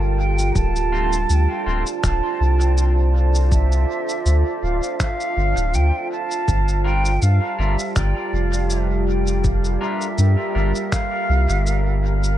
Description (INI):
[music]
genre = ambient dub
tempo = 81 BPM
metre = 4/4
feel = swing 54% on 16ths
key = D minor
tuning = A4 = 440 Hz
[part]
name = deep dark ambient pad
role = sustained chords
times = 0.0-12.4 s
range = G3 to D5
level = -25 LUFS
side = right 2 dB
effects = chorus, built-in reverb
[part]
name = soft dub sub bass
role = bass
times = 0.0-12.4 s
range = D1 to G2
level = -18 LUFS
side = equal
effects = none
[part]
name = concert flute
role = melody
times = 0.2-12.0 s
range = D5 to A5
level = -26 LUFS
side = right 3 dB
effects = dub echo
[part]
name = electronic shaker and finger snaps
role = drums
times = 0.4-12.4 s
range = none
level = -31 LUFS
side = left 1 dB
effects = dub echo
[part]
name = electronic kick drum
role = drums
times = 0.6-11.1 s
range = none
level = -21 LUFS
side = equal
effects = none
[part]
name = clean electric guitar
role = stabs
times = 0.9-1.8, 6.8-10.7 s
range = D3 to Bb4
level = -32 LUFS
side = left 4 dB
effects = dub echo
[sound]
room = little or no reverb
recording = dark, warm production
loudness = -17 LUFS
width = side -12 dB against mid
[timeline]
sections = 0.0-12.4 A section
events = none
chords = 0.0 Gm7; 0.6 Dm7; 6.5 Gm7